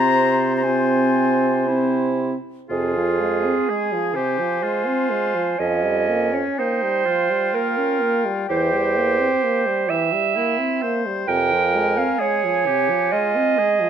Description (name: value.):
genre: classical, slow romantic movement for wind quintet.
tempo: 63 BPM.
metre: 3/4.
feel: uneven beats, rubato.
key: F minor.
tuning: A4 = 440 Hz.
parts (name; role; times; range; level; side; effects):
concert flute; melody; 0.0-13.9 s; G5 to Bb5; -27 LUFS; left 6 dB; none.
clear oboe; second line; 0.0-13.9 s; Db4 to C5; -27 LUFS; left 4 dB; none.
clear French horn; accompaniment; 0.0-13.9 s; C3 to Db4; -24 LUFS; left 1 dB; none.
clear clarinet; accompaniment; 0.0-13.9 s; E4 to G5; -21 LUFS; right 7 dB; none.
mellow bassoon; bass; 0.0-12.0 s; E2 to C3; -23 LUFS; right 2 dB; none.
room: light reverb.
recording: close, detailed microphones.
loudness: -18 LUFS.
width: side -8 dB against mid.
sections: 0.0-2.7 A section; 2.7-13.9 B section.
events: none.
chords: 0.0 Fm/C; 1.7 C; 2.7 Fm; 5.6 Gm7b5/F; 8.5 C7/E; 11.3 Fm.